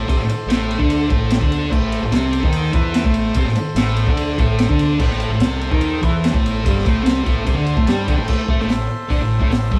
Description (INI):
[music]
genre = garage rock duo or trio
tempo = 146 BPM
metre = 4/4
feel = straight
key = A minor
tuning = A4 = 442 Hz
[part]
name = combo organ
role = sustained chords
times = 0.0-9.8 s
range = A4 to C6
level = -31 LUFS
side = equal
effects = none
[part]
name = thick fuzz guitar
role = riff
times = 0.0-9.8 s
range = G2 to A4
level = -22 LUFS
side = equal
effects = distortion
[part]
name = growling fingered electric bass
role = bass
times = 0.0-9.8 s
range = G1 to A2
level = -27 LUFS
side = equal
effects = overdrive
[part]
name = crunchy breakbeat drum kit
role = drums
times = 0.1-9.8 s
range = crash cymbal, hi-hat, kick drum, ride cymbal, snare drum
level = -21 LUFS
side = equal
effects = none
[sound]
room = moderate small room reverb, RT60 0.6 s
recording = band playing live in one room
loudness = -18 LUFS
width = mono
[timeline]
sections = 0.0-8.3 A section; 8.3-9.8 B section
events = transistor combo organ fill 7.5-8.3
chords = 0.0 Am